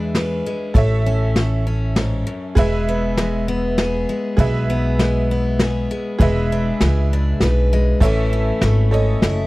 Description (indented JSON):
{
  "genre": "honky-tonk and classic country",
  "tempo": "99 BPM",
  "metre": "3/4",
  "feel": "straight",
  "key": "E major",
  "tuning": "A4 = 440 Hz",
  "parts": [
    { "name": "picked steel-string acoustic guitar", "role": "accompaniment", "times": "0.0-9.5 s", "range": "E2 to B4", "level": "-22 LUFS", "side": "left 3 dB", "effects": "none" },
    { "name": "tack piano", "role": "accompaniment", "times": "0.0-9.5 s", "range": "G#4 to E5", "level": "-26 LUFS", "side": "right 4 dB", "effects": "none" },
    { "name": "upright bass", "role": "bass", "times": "0.0-9.5 s", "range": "E1 to E2", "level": "-19 LUFS", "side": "equal", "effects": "none" },
    { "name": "vintage brush drum kit", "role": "drums", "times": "0.1-9.4 s", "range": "kick drum, ride cymbal, snare drum", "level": "-18 LUFS", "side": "equal", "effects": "none" }
  ],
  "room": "little or no reverb",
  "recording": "dry, close 1970s-style studio recording",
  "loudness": "-16 LUFS",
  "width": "side -20 dB against mid",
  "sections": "0.0-9.5 A section",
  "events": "none",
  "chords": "0.0 E7; 0.8 A; 2.6 E; 6.2 E7; 8.0 A"
}